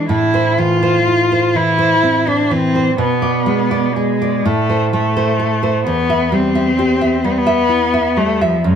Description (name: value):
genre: romantic duo for cello and classical guitar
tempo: 42 BPM (dotted quarters)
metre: 6/8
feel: uneven beats, rubato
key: A minor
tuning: A4 = 439 Hz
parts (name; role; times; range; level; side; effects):
- rich cello; melody; 0.0-8.8 s; F3 to F4; -15 LUFS; left 2 dB; tape echo
- nylon-string guitar; accompaniment; 0.0-8.8 s; E2 to E5; -16 LUFS; right 3 dB; none
room: light reverb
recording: none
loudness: -13 LUFS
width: side -8 dB against mid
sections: 0.1-8.8 A section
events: none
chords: 0.1 Am; 3.0 G#dim/B; 4.5 Am; 5.9 Em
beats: | 0.10 1.56 | 2.99 4.46 | 5.87 7.25 | 8.66